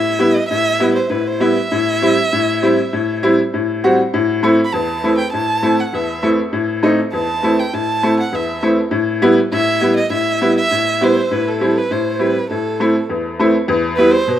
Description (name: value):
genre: klezmer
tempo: 100 BPM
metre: 4/4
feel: straight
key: A minor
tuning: A4 = 441 Hz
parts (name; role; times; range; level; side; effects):
- rich violin; melody; 0.0-14.4 s; A4 to B5; -19 LUFS; right 3 dB; none
- bright upright piano; accompaniment; 0.0-14.4 s; E2 to F#4; -15 LUFS; left 1 dB; none
room: moderate plate reverb, RT60 3.7 s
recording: rough home demo mix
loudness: -14 LUFS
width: side -11 dB against mid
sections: 0.0-13.7 A section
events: speeding up 0.0-14.4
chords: 0.0 Em/A; 1.7 C/A; 4.1 Am; 8.9 Em/A; 11.3 C/A; 12.5 Am; 13.7 Em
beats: 0.49 1.10 | 1.71 2.31 2.92 3.52 | 4.13 4.73 5.33 5.93 | 6.53 7.13 7.73 8.33 | 8.93 9.52 10.12 10.71 | 11.31 11.90 12.50 13.09 | 13.68 14.27